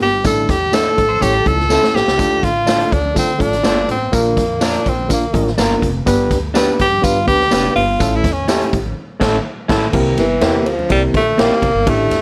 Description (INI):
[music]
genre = uptempo 1960s-style soul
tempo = 124 BPM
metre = 4/4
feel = straight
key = unclear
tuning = A4 = 437 Hz
[part]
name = breathy tenor saxophone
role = melody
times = 0.0-12.2 s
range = E3 to A4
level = -19 LUFS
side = equal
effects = none
[part]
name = overdriven reed electric piano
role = accompaniment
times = 0.0-12.2 s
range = G2 to B4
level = -22 LUFS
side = equal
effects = harmonic tremolo
[part]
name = upright bass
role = bass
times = 0.0-12.2 s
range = F1 to D3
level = -24 LUFS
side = equal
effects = none
[part]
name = swinging big-band drum kit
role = drums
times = 0.0-12.2 s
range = crash cymbal, hi-hat, kick drum, ride cymbal, snare drum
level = -22 LUFS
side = equal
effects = none
[part]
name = tambourine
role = percussion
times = 0.2-8.6 s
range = none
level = -30 LUFS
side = equal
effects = none
[part]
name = congas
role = percussion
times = 0.3-12.2 s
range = none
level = -34 LUFS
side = equal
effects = none
[part]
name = electric guitar through a small old amp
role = stabs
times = 0.7-11.5 s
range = Bb3 to B4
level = -24 LUFS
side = equal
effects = none
[part]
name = electric guitar through a small old amp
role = riff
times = 1.0-2.0 s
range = A4 to C#5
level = -24 LUFS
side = equal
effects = none
[sound]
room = light reverb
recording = none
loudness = -15 LUFS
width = mono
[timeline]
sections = 0.0-9.9 A section; 9.9-12.2 B section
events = tenor saxophone solo 0.0-9.9; drum fill 1.7-2.2; band accent 9.0-9.9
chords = 0.2 Asus4; 1.2 A; 2.2 Dm; 4.1 Bb; 6.1 G; 8.0 A; 9.9 C7